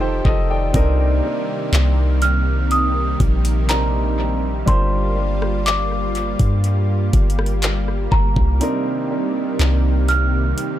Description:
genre	contemporary R&B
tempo	61 BPM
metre	4/4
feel	straight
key	C minor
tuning	A4 = 440 Hz
part	clear grand piano	accompaniment	0.0-10.8 s	C3 to G5	-25 LUFS	right 1 dB	analog delay
part	lush unison pad	sustained chords	0.0-10.8 s	C3 to A4	-25 LUFS	right 1 dB	chorus
part	soft 808-style bass	bass	0.0-10.5 s	F1 to G2	-18 LUFS	equal	none
part	smooth R&B drum kit	drums	0.3-10.8 s	handclaps, hi-hat, kick drum, rim click	-20 LUFS	equal	analog delay
part	worn celesta	melody	2.2-10.8 s	Bb5 to F6	-24 LUFS	right 1 dB	analog delay
room	little or no reverb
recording	echo-heavy mix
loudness	-16 LUFS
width	side -12 dB against mid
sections	0.0-10.8 A section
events	break 8.6-9.6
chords	0.0 F9; 0.7 Cm7; 4.7 Gm7; 8.6 Cm7

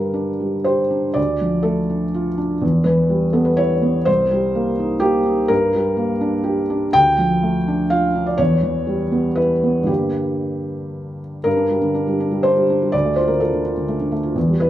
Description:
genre	neoclassical minimalist piano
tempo	112-128 BPM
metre	3/4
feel	rubato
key	G minor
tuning	A4 = 440 Hz
part	felt-muted upright piano	solo	0.0-14.7 s	C2 to G5	-16 LUFS	equal	none
room	moderate large studio reverb, RT60 1.1 s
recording	band playing live in one room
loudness	-16 LUFS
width	side -13 dB against mid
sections	0.0-11.5 A section; 11.5-14.7 B section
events	none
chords	0.0 Gm; 1.2 Dm; 2.6 Em; 4.1 Cm7; 5.5 Gm; 7.0 Dm; 8.4 Em; 9.9 Gm; 12.9 Dm

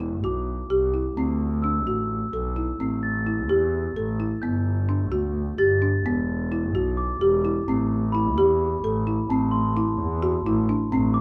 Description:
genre	contemporary instrumental, chamber music in an uneven meter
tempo	258 BPM (eighths)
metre	7/8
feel	straight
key	A dorian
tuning	A4 = 438 Hz
part	folk marimba with medium mallets	arpeggios	0.0-11.2 s	B3 to A4	-27 LUFS	equal	none
part	rich double bass	bass	0.0-11.2 s	E1 to E2	-28 LUFS	equal	none
part	glockenspiel with rubber mallets	texture	0.2-11.2 s	A5 to A6	-34 LUFS	equal	none
room	light reverb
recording	none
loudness	-24 LUFS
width	mono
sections	0.0-9.3 A section; 9.3-11.2 B section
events	none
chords	0.0 Emadd9; 1.2 D7; 2.8 Am7; 4.4 Gmaj7; 6.1 Esus2; 7.7 Am7; 9.3 Am

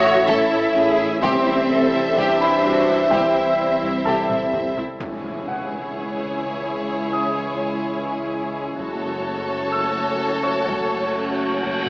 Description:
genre	cinematic, hybrid orchestral and electronic film score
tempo	127 BPM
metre	4/4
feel	straight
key	C# minor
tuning	A4 = 443 Hz
part	dark studio violin section	melody	0.0-11.9 s	C#5 to E5	-26 LUFS	equal	none
part	warm symphonic violin section	second line	0.0-11.9 s	C4 to C#5	-27 LUFS	equal	none
part	rich symphonic viola section	accompaniment	0.0-11.9 s	E4 to C#5	-27 LUFS	equal	none
part	dark trombone section	sustained chords	0.0-4.7 s	E3 to A3	-27 LUFS	equal	none
part	deep dark ambient pad	sustained chords	0.0-11.9 s	G3 to E5	-27 LUFS	equal	chorus, built-in reverb
part	mellow French horn section	sustained chords	0.0-11.9 s	G#3 to E5	-26 LUFS	equal	none
part	dark symphonic cello section	bass	0.0-11.9 s	C#2 to F#4	-26 LUFS	equal	none
part	punchy sub bass	bass	0.0-5.0 s	A1 to C2	-41 LUFS	equal	none
part	rich symphonic double bass section	bass	0.0-11.9 s	F#1 to C#2	-33 LUFS	equal	none
part	bright concert grand piano	texture	0.0-11.9 s	A4 to E6	-27 LUFS	equal	tape echo
part	taiko ensemble	drums	0.3-5.9, 8.8-11.9 s	none	-33 LUFS	equal	none
part	impact and reverse cymbal	sound effects	5.0-6.9, 11.1-11.9 s	none	-32 LUFS	equal	none
room	wet scoring stage reverb, RT60 1.5 s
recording	small speaker sound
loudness	-18 LUFS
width	side -25 dB against mid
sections	0.0-5.0 A section; 5.0-11.9 B section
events	drum fill 4.3-5.0; impact 5.0-6.9; reverse cymbal 11.1-11.9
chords	0.0 A; 1.2 C; 5.0 C#m; 8.8 F#m

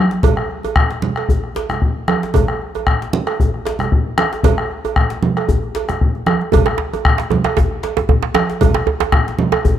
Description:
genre	west african traditional, West African drum ensemble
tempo	115 BPM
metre	4/4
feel	swing 54% on 16ths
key	unclear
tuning	A4 = 440 Hz
part	talking drum	melody	0.0-0.8 s	F#3	-19 LUFS	left 1 dB	none
part	djembe	percussion	0.1-9.8 s	none	-23 LUFS	left 2 dB	none
part	bombo	percussion	0.2-9.8 s	none	-17 LUFS	left 2 dB	none
part	congas	percussion	0.2-9.6 s	none	-21 LUFS	right 4 dB	none
part	cowbell	percussion	0.2-9.6 s	none	-23 LUFS	right 10 dB	none
part	djembe	percussion	6.5-9.6 s	none	-20 LUFS	right 7 dB	none
room	light reverb, studio reverb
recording	dry, close 1970s-style studio recording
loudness	-14 LUFS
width	side -10 dB against mid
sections	0.0-6.5 A section; 6.5-9.8 B section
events	none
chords	none

